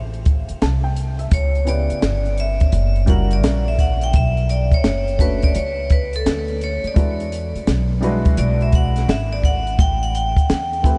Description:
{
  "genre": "hip hop, jazz-hop",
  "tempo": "85 BPM",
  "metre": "4/4",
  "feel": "swing 65% on 16ths",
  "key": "E minor",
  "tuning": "A4 = 440 Hz",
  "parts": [
    { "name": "upright bass", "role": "bass", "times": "0.0-11.0 s", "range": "F#1 to E2", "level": "-23 LUFS", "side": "equal", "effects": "none" },
    { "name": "compact cocktail drum kit", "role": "drums", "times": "0.1-11.0 s", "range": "hi-hat, kick drum, snare drum", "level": "-21 LUFS", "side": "equal", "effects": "vintage 12-bit sampler grit" },
    { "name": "dark upright piano", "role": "accompaniment", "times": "0.6-11.0 s", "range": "C#3 to A5", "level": "-30 LUFS", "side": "equal", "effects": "none" },
    { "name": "vibraphone with hard mallets", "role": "melody", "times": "1.3-11.0 s", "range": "A4 to G5", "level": "-27 LUFS", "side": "equal", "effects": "diffuse ambient delay" }
  ],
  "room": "light reverb, small room reverb",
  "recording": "nothing above 10.6 kHz",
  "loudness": "-19 LUFS",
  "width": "mono",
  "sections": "0.0-11.0 A section",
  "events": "vibraphone solo 0.0-11.0",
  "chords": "0.0 Fadd9 (rootless); 1.3 C#m7b5; 2.7 F#7b9; 4.1 Bmadd9; 7.0 E7; 9.8 Am7",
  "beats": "0.61 | 1.32 2.02 2.73 3.44 | 4.14 4.85 5.55 6.26 | 6.96 7.67 8.38 9.08 | 9.79 10.49"
}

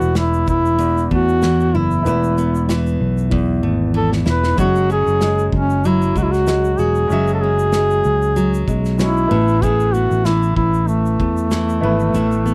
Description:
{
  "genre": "acoustic pop",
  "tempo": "95 BPM",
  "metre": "4/4",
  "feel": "swing 55% on 16ths",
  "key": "A major",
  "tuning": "A4 = 442 Hz",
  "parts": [
    { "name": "warm duduk", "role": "melody", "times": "0.0-12.5 s", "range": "A3 to B4", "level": "-21 LUFS", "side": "equal", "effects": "none" },
    { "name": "clear grand piano", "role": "accompaniment", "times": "0.0-12.5 s", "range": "G#3 to E5", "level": "-30 LUFS", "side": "equal", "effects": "none" },
    { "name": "nylon-string guitar", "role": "accompaniment", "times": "0.0-12.5 s", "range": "E2 to F#4", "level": "-23 LUFS", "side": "equal", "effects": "none" },
    { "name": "fingered electric bass", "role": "bass", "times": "0.0-12.5 s", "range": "E1 to E2", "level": "-22 LUFS", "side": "equal", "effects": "none" },
    { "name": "loose indie drum kit", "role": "drums", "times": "0.0-12.5 s", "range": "kick drum, shaker, snare drum", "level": "-27 LUFS", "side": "equal", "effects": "none" }
  ],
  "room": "little or no reverb",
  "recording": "none",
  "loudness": "-17 LUFS",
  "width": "mono",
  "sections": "0.0-12.5 A section",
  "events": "drum fill 3.3-4.6",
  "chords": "0.0 Asus2/E; 4.6 F#sus2; 9.3 Asus2",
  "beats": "0.16 0.80 1.43 | 2.06 2.69 3.32 3.95 | 4.58 5.21 5.84 6.47 | 7.10 7.73 8.36 8.99 | 9.62 10.25 10.88 11.51 | 12.14"
}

